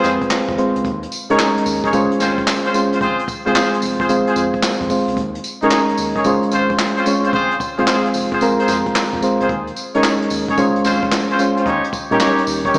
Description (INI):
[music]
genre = R&B, new jack swing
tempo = 111 BPM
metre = 4/4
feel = swing 67% on 16ths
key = F minor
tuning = A4 = 440 Hz
[part]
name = soft electric-piano-like synth keys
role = accompaniment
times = 0.0-12.8 s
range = G3 to F5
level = -17 LUFS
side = equal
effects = chorus
[part]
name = warm horn section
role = stabs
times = 0.0-12.8 s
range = C4 to Db5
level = -20 LUFS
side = left 1 dB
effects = slapback echo
[part]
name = round analog bass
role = bass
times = 0.0-12.8 s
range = F1 to Eb3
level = -29 LUFS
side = equal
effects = none
[part]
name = jazz brush drum kit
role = drums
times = 0.0-12.8 s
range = handclaps, hi-hat, kick drum, snare drum, tambourine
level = -22 LUFS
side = equal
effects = none
[sound]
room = wet concert hall reverb, RT60 2.1 s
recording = big arena sound, small speaker sound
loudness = -14 LUFS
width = side -27 dB against mid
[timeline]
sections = 0.0-12.8 A section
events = none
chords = 0.0 Fm; 0.8 Eb7sus4; 1.9 Dbmaj7; 3.0 Fm; 5.2 Eb7sus4; 6.2 Dbmaj7; 7.3 Fm; 9.5 Eb7sus4; 10.6 Dbmaj7; 11.7 Eb7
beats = 0.30 | 0.84 1.39 1.93 2.47 | 3.01 3.55 4.09 4.63 | 5.17 5.71 6.25 6.79 | 7.33 7.87 8.41 8.95 | 9.49 10.03 10.57 11.12 | 11.65 12.20 12.74